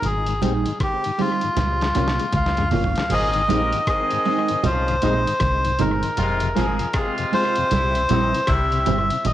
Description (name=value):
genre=roots reggae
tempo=78 BPM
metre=4/4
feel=swing 63% on 16ths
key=unclear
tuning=A4 = 441 Hz
part: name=melodica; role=melody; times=0.0-9.3 s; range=F4 to F5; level=-22 LUFS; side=left 1 dB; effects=cassette tape, dub echo
part: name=deep dub fingered electric bass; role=bass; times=0.0-9.3 s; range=F1 to Db2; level=-24 LUFS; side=left 1 dB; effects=none
part: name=dusty soul sampler-style drum kit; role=drums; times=0.0-9.3 s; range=crash cymbal, hi-hat, kick drum, rim click, snare drum, toms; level=-28 LUFS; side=left 1 dB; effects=analog delay
part: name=congas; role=percussion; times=0.0-9.3 s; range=none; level=-28 LUFS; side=right 5 dB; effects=none
part: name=mellow tonewheel organ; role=accompaniment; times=0.3-9.2 s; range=F2 to G4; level=-29 LUFS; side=left 7 dB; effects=slow rotary speaker, cassette tape, analog delay
part: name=mellow electric guitar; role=accompaniment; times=0.4-9.1 s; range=G3 to F4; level=-27 LUFS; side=right 8 dB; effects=ensemble chorus, cassette tape, dub echo
part: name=mellow horn section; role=second line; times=3.1-9.1 s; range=C3 to Bb4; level=-28 LUFS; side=left 1 dB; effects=cassette tape, dub echo
room=light reverb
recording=home recording on cassette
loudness=-18 LUFS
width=side -13 dB against mid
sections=0.0-3.1 A section; 3.1-9.3 B section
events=drum fill 1.6-3.1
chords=0.0 Abmaj7; 1.6 Db6; 3.1 Ab; 6.2 Fm; 7.7 C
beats=| 0.04 0.80 1.57 2.34 | 3.11 3.88 4.64 5.41 | 6.18 6.95 7.71 8.48 | 9.25